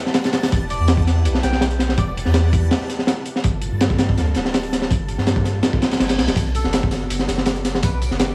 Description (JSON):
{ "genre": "drum and bass, jungle", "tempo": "164 BPM", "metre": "4/4", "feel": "straight", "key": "unclear", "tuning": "A4 = 440 Hz", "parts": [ { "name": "backwards swelling texture", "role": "texture", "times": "0.0-8.3 s", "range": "A5 to D6", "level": "-40 LUFS", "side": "equal", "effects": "built-in reverb" }, { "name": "crunchy breakbeat drum kit", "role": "drums", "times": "0.1-8.3 s", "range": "hi-hat, kick drum, snare drum", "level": "-21 LUFS", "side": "equal", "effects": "none" }, { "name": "soft dub sub bass", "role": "bass", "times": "0.5-8.3 s", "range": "D1 to G2", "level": "-23 LUFS", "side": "equal", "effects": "none" }, { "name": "melodica", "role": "melody", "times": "0.7-2.1, 6.6-8.0 s", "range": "A4 to G5", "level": "-34 LUFS", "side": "equal", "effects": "vintage 12-bit sampler grit, dub echo" }, { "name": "reverse cymbal", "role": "sound effects", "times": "5.8-6.4 s", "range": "none", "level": "-36 LUFS", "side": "equal", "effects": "none" }, { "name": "crunchy breakbeat drum kit", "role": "drums", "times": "6.4-8.3 s", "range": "hi-hat, snare drum, tambourine", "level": "-36 LUFS", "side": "equal", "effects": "high-pass filter on hats, high-pass filter on snare, high-pass filter on perc, high-pass filter on room" } ], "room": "light reverb, small room ambience", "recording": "studio reverb", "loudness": "-19 LUFS", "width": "mono", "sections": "0.0-8.3 A section", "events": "reverse cymbal 5.8-6.4", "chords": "0.0 Em7; 2.7 Gm7; 6.4 Bm7" }